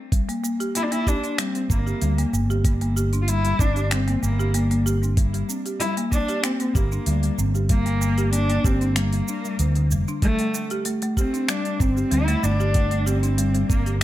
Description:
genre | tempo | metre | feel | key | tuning
organic downtempo | 95 BPM | 4/4 | straight | G dorian | A4 = 440 Hz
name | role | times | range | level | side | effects
folk marimba with medium mallets | arpeggios | 0.1-14.0 s | D3 to G4 | -26 LUFS | left 1 dB | vintage 12-bit sampler grit, digital delay
afro-pop drum kit | drums | 0.1-14.0 s | cabasa, finger snaps, hi-hat | -29 LUFS | equal | none
electronic kick drum | drums | 0.1-13.8 s | none | -21 LUFS | equal | none
dark cello | melody | 0.8-14.0 s | A3 to F4 | -27 LUFS | equal | ping-pong delay
fretless electric bass | bass | 1.7-14.0 s | F1 to D2 | -22 LUFS | equal | sidechain pumping
room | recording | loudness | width
digital ambience | none | -20 LUFS | side -14 dB against mid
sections
0.1-14.0 A section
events
none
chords
0.1 Gm; 10.2 D5/G

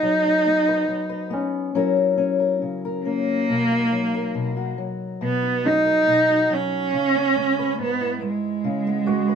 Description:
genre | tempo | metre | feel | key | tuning
acoustic folk-pop ballad | 70 BPM | 4/4 | straight | B major | A4 = 440 Hz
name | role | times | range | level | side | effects
warm cello | melody | 0.0-9.3 s | G#3 to D#4 | -20 LUFS | right 2 dB | none
fingerpicked old ladder-braced acoustic guitar | accompaniment | 0.0-9.3 s | G#2 to B4 | -25 LUFS | left 5 dB | none
felt-muted upright piano | arpeggios | 1.3-9.3 s | C#4 to F#4 | -28 LUFS | left 3 dB | none
room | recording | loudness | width
moderate studio reverb, RT60 0.6 s | band playing live in one room | -19 LUFS | side -7 dB against mid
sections
0.0-9.3 A section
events
none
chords
0.0 B/F#; 1.8 F#7; 3.5 Bmaj7; 6.9 C#m7

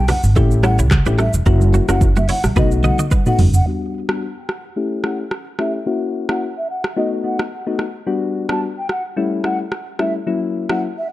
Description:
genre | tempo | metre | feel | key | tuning
afrobeats | 109 BPM | 4/4 | swing 55% on 16ths | A mixolydian | A4 = 440 Hz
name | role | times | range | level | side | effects
mellow hollow concert flute | melody | 0.0-11.1 s | D#5 to A5 | -26 LUFS | right 1 dB | low-pass filter, digital delay
direct-recorded clean electric guitar | riff | 0.0-3.3 s | A#3 to D#5 | -26 LUFS | right 5 dB | analog chorus, digital delay
upright bass | bass | 0.0-3.6 s | E1 to C#2 | -16 LUFS | equal | none
afro-pop drum kit | drums | 0.1-10.8 s | handclaps, hi-hat, kick drum, rim click, shaker, toms | -19 LUFS | right 1 dB | none
congas | percussion | 0.1-3.5 s | none | -25 LUFS | right 2 dB | none
soft electric-piano-like synth keys | accompaniment | 0.4-10.9 s | F#3 to G4 | -21 LUFS | left 4 dB | chorus, low-pass filter
room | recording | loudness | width
digital ambience | dark, warm production | -16 LUFS | side -16 dB against mid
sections
0.0-3.7 A section; 3.7-11.1 B section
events
drum fill 2.6-3.7; filter sweep 3.7-11.1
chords
0.4 A7; 1.5 F#7; 2.6 B7; 3.7 Gmaj7; 4.8 A7; 5.9 F#7; 7.0 B7; 8.1 Gmaj7; 9.2 A7; 10.3 F#7

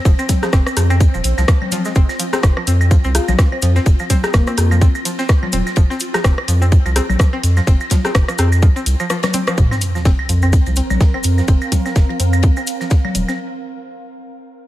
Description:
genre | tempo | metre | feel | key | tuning
minimal techno | 126 BPM | 4/4 | swing 57% on 16ths | unclear | A4 = 444 Hz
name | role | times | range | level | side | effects
pulsing gated texture | texture | 0.0-9.6 s | C4 to C5 | -30 LUFS | right 2 dB | chorus, built-in reverb, sidechain pumping
string-like resonator pluck | riff | 0.1-13.3 s | F3 to C4 | -25 LUFS | equal | chorus, sidechain pumping, dub echo
saturated sub bass | bass | 0.1-13.2 s | Eb1 to F2 | -16 LUFS | equal | sidechain pumping
electronic kick drum | drums | 0.1-13.0 s | none | -12 LUFS | equal | overdrive
tight funk drum kit | drums | 0.1-13.4 s | ride cymbal, snare drum | -34 LUFS | left 3 dB | sidechain pumping on cymbals, high-pass filter on cymbals, high-pass filter on snare, high-pass filter on room
cabasa | percussion | 0.1-13.4 s | none | -30 LUFS | left 2 dB | none
electronic claves, congas and rim click | percussion | 0.2-13.4 s | none | -23 LUFS | left 1 dB | none
punchy analog drum machine | drums | 0.3-13.3 s | hi-hat, rim click | -22 LUFS | equal | none
soft struck synth lead | melody | 3.1-4.8 s | Bb3 to F4 | -25 LUFS | left 3 dB | chorus, dub echo
sub drop | sound effects | 9.6-11.5 s | none | -23 LUFS | equal | none
ethereal airy pad | texture | 10.0-13.4 s | C4 to F5 | -26 LUFS | right 4 dB | ensemble chorus, built-in reverb, sidechain pumping
room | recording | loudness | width
digital ambience | none | -13 LUFS | side -15 dB against mid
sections
0.0-9.6 A section; 9.6-13.4 B section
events
drop 0.0-9.6; break 9.1-9.6; drum fill 9.1-9.6; impact 9.6-11.5; filter sweep on sub bass 9.6-13.4; filter sweep on synth pluck 9.6-13.4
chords
0.0 F5; 9.6 Fsus4

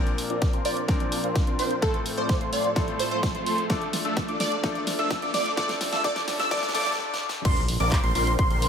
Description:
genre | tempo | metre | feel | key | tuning
EDM, festival progressive house | 128 BPM | 4/4 | straight | unclear | A4 = 440 Hz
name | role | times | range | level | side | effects
bright grand piano | accompaniment | 0.0-7.5 s | A2 to Bb4 | -33 LUFS | left 4 dB | sidechain pumping, digital delay
lush unison pad | sustained chords | 0.2-8.7 s | A2 to Bb4 | -36 LUFS | equal | chorus, phaser, sidechain pumping
wide unison lead | arpeggios | 0.0-8.7 s | C6 to E6 | -30 LUFS | equal | sidechain pumping, digital delay
big supersaw lead | riff | 0.0-8.7 s | A3 to E5 | -32 LUFS | right 1 dB | phaser, sidechain pumping, low-pass filter, digital delay
riser and impact | sound effects | 0.0-8.7 s | none | -39 LUFS | equal | none
big-room dance drum kit | drums | 0.1-8.7 s | crash cymbal, handclaps, hi-hat, snare drum | -32 LUFS | equal | studio reverb
electronic kick drum | drums | 0.4-8.5 s | none | -25 LUFS | equal | studio reverb
plucky unison lead | melody | 0.7-6.9 s | A4 to D5 | -30 LUFS | right 1 dB | analog chorus, digital delay
fat analog bass | bass | 7.5-8.7 s | Bb1 | -27 LUFS | equal | sidechain pumping
room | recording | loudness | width
light reverb | high-pass filter | -23 LUFS | side -7 dB against mid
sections
0.0-7.5 A section; 7.5-8.7 B section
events
build-up 0.0-7.5; drum fill 0.0-7.0, 7.0-7.5; filter sweep on supersaw synth 0.0-7.5; filter sweep on analog synth lead 0.0-7.5; filter sweep 0.0-7.5; break 7.0-7.5; drop 7.5-8.7; impact 7.5-8.7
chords
0.0 Bbadd9; 1.8 F/A; 3.7 Dm; 5.6 G5; 7.5 Bbadd9

